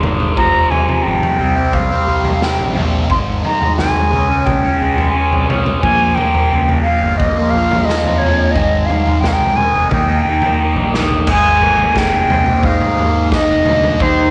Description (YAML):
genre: psychedelic rock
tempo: 88 BPM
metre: 4/4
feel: straight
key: unclear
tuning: A4 = 437 Hz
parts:
  - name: fuzz guitar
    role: riff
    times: 0.0-14.3 s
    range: F2 to C5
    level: -20 LUFS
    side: equal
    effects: distortion, phaser
  - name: fuzz fingered electric bass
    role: bass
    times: 0.0-14.3 s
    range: F1 to Ab2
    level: -24 LUFS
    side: equal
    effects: overdrive
  - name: raw garage drum kit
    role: drums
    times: 0.0-14.2 s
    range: crash cymbal, kick drum, snare drum, toms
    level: -20 LUFS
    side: equal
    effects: none
  - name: silver concert flute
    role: melody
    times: 0.4-14.3 s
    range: C5 to C6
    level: -19 LUFS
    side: equal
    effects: tape echo
room: light reverb, small room ambience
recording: none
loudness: -14 LUFS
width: mono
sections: 0.0-11.3 A section; 11.3-14.3 B section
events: drum fill 10.9-11.3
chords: 0.4 Fm; 1.4 C5; 3.1 Ab; 4.1 Db5; 5.8 Bb5; 8.6 Ab; 9.9 Eb; 11.3 Abadd9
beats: | 0.38 1.06 1.75 2.43 | 3.11 3.79 4.47 5.15 | 5.83 6.52 7.20 7.88 | 8.56 9.24 9.92 10.60 | 11.29 11.97 12.65 13.33 | 14.01